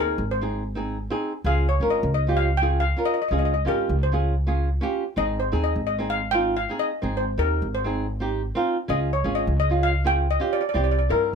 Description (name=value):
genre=calypso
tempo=129 BPM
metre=4/4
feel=swing 53% on 16ths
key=Ab major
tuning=A4 = 439 Hz
part: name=steel pan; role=melody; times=0.0-11.3 s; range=Bb4 to G5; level=-25 LUFS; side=left 2 dB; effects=none
part: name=flamenco guitar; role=accompaniment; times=0.0-11.3 s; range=C4 to Bb4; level=-26 LUFS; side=right 2 dB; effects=none
part: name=upright bass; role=bass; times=0.0-11.3 s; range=Ab1 to G2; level=-24 LUFS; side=equal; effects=none
room=light reverb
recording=close, detailed microphones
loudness=-21 LUFS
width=side -6 dB against mid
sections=0.0-11.3 A section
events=none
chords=0.0 Ab; 1.5 Db; 5.2 Abmaj7; 8.9 Db; 10.7 C7